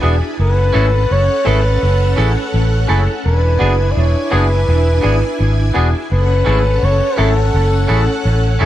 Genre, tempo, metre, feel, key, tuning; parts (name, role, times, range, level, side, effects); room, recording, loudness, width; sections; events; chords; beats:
reggae; 84 BPM; 4/4; swing 56% on 16ths; A4 = 440 Hz
mellow flugelhorn; melody; 0.0-8.6 s; A4 to D5; -19 LUFS; left 1 dB; tape echo
string machine, violins; second line; 0.0-8.7 s; C#4 to G#5; -21 LUFS; equal; ensemble chorus, dub echo
barky tine electric piano; accompaniment; 0.0-8.7 s; A3 to G#4; -24 LUFS; left 2 dB; overdrive, lush chorus
twangy electric guitar; stabs; 0.0-8.7 s; B3 to A4; -24 LUFS; right 4 dB; dub echo
vintage muted fingered electric bass; bass; 0.0-8.7 s; E1 to A1; -14 LUFS; equal
light reverb; -12 LUFS; side -13 dB against mid
0.0-8.7 A section
0.4 F#m7; 3.2 E7; 6.1 F#m7
| 0.37 1.09 1.81 2.52 | 3.24 3.95 4.67 5.39 | 6.10 6.82 7.53 8.25